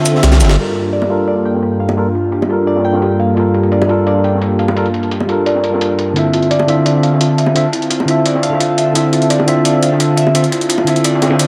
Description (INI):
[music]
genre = liquid drum and bass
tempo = 172 BPM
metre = 4/4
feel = straight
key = G dorian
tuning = A4 = 440 Hz
[part]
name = tine electric piano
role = accompaniment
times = 0.0-11.5 s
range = D3 to E5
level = -18 LUFS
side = equal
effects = low-pass filter, delay
[part]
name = warm analog pad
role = sustained chords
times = 0.0-11.5 s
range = G2 to A5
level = -21 LUFS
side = equal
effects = chorus
[part]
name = crunchy breakbeat drum kit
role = drums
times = 0.1-11.5 s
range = ride cymbal, snare drum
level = -28 LUFS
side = equal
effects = high-pass filter on cymbals, low-pass filter on cymbals, high-pass filter on snare, low-pass filter on snare, high-pass filter on room, low-pass filter on room
[part]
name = jungle sampler-style drum kit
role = drums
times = 0.1-11.5 s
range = hi-hat, shaker, snare drum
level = -24 LUFS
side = equal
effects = low-pass filter on hats, low-pass filter on perc, low-pass filter on snare, low-pass filter on room
[part]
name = saturated sub bass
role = bass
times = 0.2-0.6 s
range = G1 to C2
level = -12 LUFS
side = equal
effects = none
[part]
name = harp-like synth pluck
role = arpeggios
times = 0.6-11.5 s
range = E4 to G5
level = -20 LUFS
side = equal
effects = chorus, delay
[part]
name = bongos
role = percussion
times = 1.0-10.8 s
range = none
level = -24 LUFS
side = equal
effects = none
[sound]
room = moderate lush hall reverb, RT60 2.2 s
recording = none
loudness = -14 LUFS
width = mono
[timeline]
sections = 0.6-11.5 A section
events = drum fill 0.2-0.6; band accent 0.5; filter sweep on drum 0.6-11.5; filter sweep on tine electric piano 0.6-11.5; filter sweep on analog synth pad 0.6-11.5; filter sweep on synth pluck 0.6-11.5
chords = 0.0 Dm9; 0.6 Gm9; 6.2 Dm9